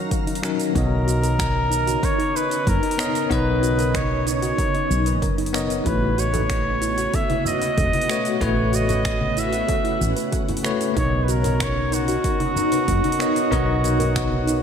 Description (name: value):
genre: sunset chillout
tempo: 94 BPM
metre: 4/4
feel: straight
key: unclear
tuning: A4 = 441 Hz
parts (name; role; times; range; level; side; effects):
- clear flugelhorn; melody; 0.0-14.6 s; F#4 to E5; -25 LUFS; equal; analog delay
- bell-like tine electric piano; accompaniment; 0.0-14.6 s; F#3 to D#5; -27 LUFS; moving between left 5 dB and right 5 dB; fast stereo tremolo, auto-pan, analog delay
- shimmering ambient pad; sustained chords; 0.0-14.6 s; C#3 to A#5; -27 LUFS; left 1 dB; chorus, built-in reverb
- soft round pluck; arpeggios; 0.0-14.6 s; D#4 to B4; -31 LUFS; right 3 dB; chorus, analog delay
- deep house drum kit; drums; 0.1-14.6 s; finger snaps, hi-hat, shaker; -31 LUFS; right 2 dB; overdrive
- electronic kick drum; drums; 0.1-14.3 s; none; -26 LUFS; equal; overdrive
- woody fretless electric bass; bass; 0.8-14.6 s; E1 to B1; -23 LUFS; equal; tube saturation
- congas; percussion; 6.3-14.4 s; none; -32 LUFS; left 2 dB; none
room: moderate lush hall reverb, RT60 2.1 s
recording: dreamy mix soaked in reverb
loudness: -19 LUFS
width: side -8 dB against mid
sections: 0.0-14.6 A section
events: none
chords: 0.0 F#6; 0.8 Bmaj9; 5.9 A69; 11.0 Bmaj9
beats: 0.12 | 0.75 1.39 2.03 2.67 | 3.31 3.95 4.58 5.22 | 5.86 6.50 7.14 7.78 | 8.41 9.05 9.69 10.33 | 10.97 11.61 12.24 12.88 | 13.52 14.16